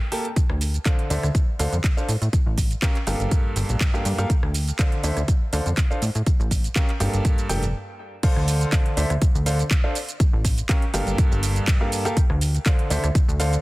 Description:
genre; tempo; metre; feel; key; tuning
piano house; 122 BPM; 4/4; swing 53% on 16ths; D minor; A4 = 440 Hz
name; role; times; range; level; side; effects
clear baby grand piano; riff; 0.1-13.5 s; G2 to A5; -27 LUFS; equal; sidechain pumping, dub echo
house drum kit; drums; 0.1-13.6 s; crash cymbal, handclaps, hi-hat, rim click, shaker; -30 LUFS; right 2 dB; none
electronic kick drum; drums; 0.4-13.3 s; none; -20 LUFS; equal; none
plucky analog bass; bass; 0.5-13.6 s; F1 to A2; -23 LUFS; equal; sidechain pumping
room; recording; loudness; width
digital ambience; dense, heavily limited modern master; -19 LUFS; side -20 dB against mid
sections
0.0-8.2 A section; 8.2-13.6 B section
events
stop 7.7-8.2; drop 8.2-13.6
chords
0.4 Dm7; 2.1 A7b9b13; 3.1 Gm9; 4.3 Dm7; 6.0 A7b9b13; 7.0 Gm9; 8.2 Dm7; 10.0 A7b9b13; 10.9 Gm9; 12.2 Dm7

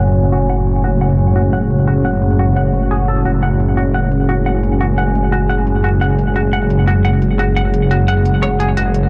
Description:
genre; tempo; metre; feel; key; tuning
dark technical drum and bass; 174 BPM; 4/4; straight; F# minor; A4 = 439 Hz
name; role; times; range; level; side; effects
dark analog pad; sustained chords; 0.0-9.1 s; A3 to G#4; -20 LUFS; equal; chorus
semi-hollow electric guitar; arpeggios; 0.0-8.8 s; F#4 to F#5; -25 LUFS; equal; digital delay
phased detuned saw bass; bass; 0.0-9.1 s; F#1; -17 LUFS; equal; phaser, overdrive
warbly tape-like pad; texture; 0.0-9.1 s; F#4 to G#5; -26 LUFS; equal; chorus, built-in reverb
electronic hi-hat; drums; 0.2-9.0 s; none; -43 LUFS; equal; none
swell; sound effects; 2.7-3.3 s; none; -32 LUFS; equal; none
room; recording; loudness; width
light reverb; low-pass filter; -15 LUFS; mono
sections
0.0-9.1 A section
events
filter sweep on analog synth pad 0.0-9.1; filter sweep 0.0-9.1; swell 2.7-3.3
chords
0.0 F#m

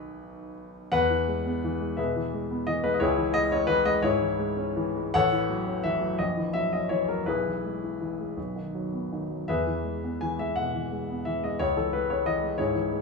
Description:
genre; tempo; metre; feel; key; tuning
classical, romantic character piece for solo piano; 56 BPM (dotted quarters); 6/8; uneven beats, rubato; E major; A4 = 440 Hz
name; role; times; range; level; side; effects
warm grand piano; solo; 0.0-13.0 s; A1 to G#5; -25 LUFS; left 2 dB; none
room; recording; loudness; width
moderate large studio reverb, RT60 0.9 s; studio ambience; -25 LUFS; side -3 dB against mid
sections
0.9-13.0 A section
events
none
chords
0.0 B; 0.9 E; 3.0 C#m; 5.1 F#m7/A; 6.2 F#7/A#; 7.3 E/B; 8.4 B; 9.5 E; 11.6 C#m

